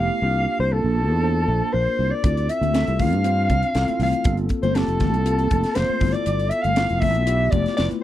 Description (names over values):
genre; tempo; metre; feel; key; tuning
electric jazz fusion; 119 BPM; 4/4; straight; unclear; A4 = 440 Hz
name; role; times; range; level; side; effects
mellow soprano saxophone; melody; 0.0-7.9 s; A4 to F5; -24 LUFS; left 3 dB; slapback echo
silver concert flute; second line; 0.0-7.8 s; A4 to F5; -30 LUFS; right 4 dB; none
tine electric piano; accompaniment; 0.0-8.0 s; A3 to C5; -27 LUFS; right 2 dB; medium stereo tremolo, analog chorus
sustaining fretless electric bass; bass; 0.0-8.0 s; F1 to G2; -22 LUFS; equal; none
crisp fusion drum kit; drums; 2.2-8.0 s; hi-hat, kick drum, snare drum; -24 LUFS; equal; none
congas; percussion; 2.6-8.0 s; none; -29 LUFS; left 14 dB; none
room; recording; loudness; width
little or no reverb; dry, close 1970s-style studio recording; -18 LUFS; side -13 dB against mid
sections
0.0-8.0 A section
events
none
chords
0.2 C7sus4; 2.2 Dm7; 4.3 Gm11; 6.0 G13